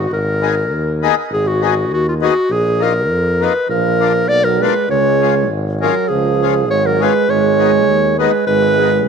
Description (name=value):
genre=alpine folk, alpine dance band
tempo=100 BPM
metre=2/4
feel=swing 53% on 8ths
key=unclear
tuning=A4 = 440 Hz
part: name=warm clarinet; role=melody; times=0.0-9.1 s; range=F4 to D5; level=-16 LUFS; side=left 2 dB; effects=none
part: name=warm tuba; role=bass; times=0.0-9.1 s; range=Ab1 to F2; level=-20 LUFS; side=equal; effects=none
part: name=accordion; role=accompaniment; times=0.4-8.9 s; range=Ab3 to Ab4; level=-21 LUFS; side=left 11 dB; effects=none
part: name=warm euphonium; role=second line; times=3.7-9.1 s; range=F3 to Bb3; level=-17 LUFS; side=right 14 dB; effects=none
room=moderate plate reverb, RT60 2.4 s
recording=1960s-style stereo with parts hard left and right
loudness=-12 LUFS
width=side -6 dB against mid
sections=0.0-9.1 A section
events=none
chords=0.1 Abm; 2.5 Bbsus4; 3.7 Bb; 4.9 Db; 7.3 Abm